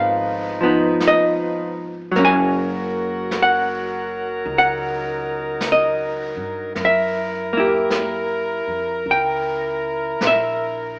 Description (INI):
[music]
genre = jazz ballad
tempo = 52 BPM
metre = 4/4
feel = swing 67% on 8ths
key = unclear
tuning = A4 = 440 Hz
[part]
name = archtop guitar, miked and amplified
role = accompaniment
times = 0.0-11.0 s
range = E#3 to G#5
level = -21 LUFS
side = equal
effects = none
[part]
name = bright saxophone section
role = sustained chords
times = 0.0-11.0 s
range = E#3 to B4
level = -27 LUFS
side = equal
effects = none
[part]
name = upright bass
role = bass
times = 0.0-11.0 s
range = F#1 to G2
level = -36 LUFS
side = equal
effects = none
[part]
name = jazz brush drum kit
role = drums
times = 1.0-11.0 s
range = brushed snare drum, hi-hat, snare drum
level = -32 LUFS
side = equal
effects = none
[sound]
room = wet large studio reverb, RT60 0.8 s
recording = AM radio sound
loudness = -20 LUFS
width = mono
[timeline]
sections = 0.0-11.0 A section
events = none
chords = 0.0 C#9 (rootless); 2.2 F#; 6.8 F#7b9